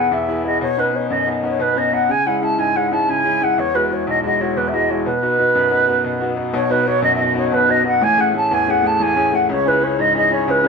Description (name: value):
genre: celtic folk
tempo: 122 BPM (dotted quarters)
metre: 9/8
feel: straight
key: B mixolydian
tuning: A4 = 438 Hz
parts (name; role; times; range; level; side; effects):
- baroque flute; melody; 0.0-10.7 s; B4 to A5; -16 LUFS; right 1 dB; slapback echo
- bright upright piano; accompaniment; 0.0-10.7 s; A1 to G#4; -20 LUFS; left 2 dB; none
room: moderate studio ambience, RT60 0.5 s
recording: dark, warm production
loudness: -15 LUFS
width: side -5 dB against mid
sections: 0.0-6.5 A section; 6.5-10.7 A section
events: none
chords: 0.0 E; 0.6 Badd9; 2.1 C#m; 3.6 Eadd9; 5.1 B; 8.0 Amaj7; 9.5 C#m